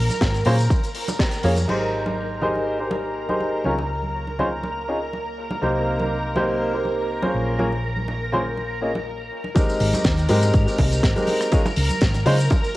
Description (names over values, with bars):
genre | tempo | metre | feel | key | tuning
nu-disco, nu disco | 122 BPM | 4/4 | straight | Ab major | A4 = 439 Hz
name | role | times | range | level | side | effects
string machine, full ensemble | sustained chords | 0.0-12.8 s | Bb4 to Bb5 | -28 LUFS | right 1 dB | phaser, ensemble chorus, sidechain pumping, cassette tape
hollow-body short-scale fingered electric bass | bass | 0.0-12.5 s | Ab1 to Db3 | -24 LUFS | equal | none
tight funk drum kit | drums | 0.1-1.8, 9.6-12.7 s | crash cymbal, hi-hat, rim click, shaker, snare drum | -28 LUFS | left 1 dB | studio reverb, cassette tape
congas | percussion | 0.1-12.6 s | none | -30 LUFS | right 2 dB | none
electronic kick drum | drums | 0.2-1.3, 9.6-12.6 s | none | -20 LUFS | equal | studio reverb, cassette tape
clear grand piano | accompaniment | 0.5-12.3 s | Ab3 to Eb5 | -24 LUFS | equal | vintage 12-bit sampler grit, sidechain pumping, cassette tape, tape echo
room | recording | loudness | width
moderate spring reverb, RT60 1.7 s | home recording on cassette | -19 LUFS | side -18 dB against mid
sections
0.0-1.7 A section; 1.7-9.6 B section; 9.6-12.8 C section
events
band accent 1.2; drop 9.6-12.8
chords
0.0 Bbm7; 1.7 Abmaj7; 3.7 N.C.; 5.6 Cm7; 7.3 Bbm9; 9.6 Abmaj7; 11.5 Db5